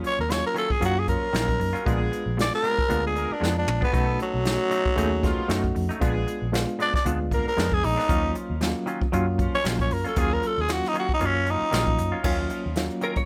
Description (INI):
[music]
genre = straight-eighth soul blues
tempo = 116 BPM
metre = 4/4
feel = swing 55% on 16ths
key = Eb minor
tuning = A4 = 442 Hz
[part]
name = barky reed electric piano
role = accompaniment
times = 0.0-13.2 s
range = Gb3 to Ab4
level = -32 LUFS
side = equal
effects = overdrive, fast tremolo
[part]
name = clear horn section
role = sustained chords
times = 0.0-12.8 s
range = F3 to Bb4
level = -38 LUFS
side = equal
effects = none
[part]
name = direct-recorded clean electric guitar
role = stabs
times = 0.0-13.2 s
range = Bb2 to F4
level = -36 LUFS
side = equal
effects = none
[part]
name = jazz brush drum kit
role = drums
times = 0.0-13.3 s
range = crash cymbal, hi-hat, kick drum, snare drum, toms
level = -30 LUFS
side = equal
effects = none
[part]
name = growling tenor saxophone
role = melody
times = 0.1-12.2 s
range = F#3 to D5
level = -28 LUFS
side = equal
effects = none
[part]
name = vintage muted fingered electric bass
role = bass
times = 0.2-12.9 s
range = Bb1 to Gb2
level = -30 LUFS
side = equal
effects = none
[part]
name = direct-recorded clean electric guitar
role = second line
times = 13.0-13.3 s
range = Bb4 to Db5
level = -30 LUFS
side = equal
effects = ensemble chorus
[sound]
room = light reverb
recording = none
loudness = -24 LUFS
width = mono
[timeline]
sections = 0.0-12.2 A section; 12.2-13.3 A section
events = tenor saxophone solo 0.0-12.2; drum fill 3.4-3.9; clean electric guitar solo 12.2-13.3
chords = 0.0 Ebm9; 1.9 Bb7b9; 3.9 B7; 6.0 Bb7b9; 8.1 Ebm9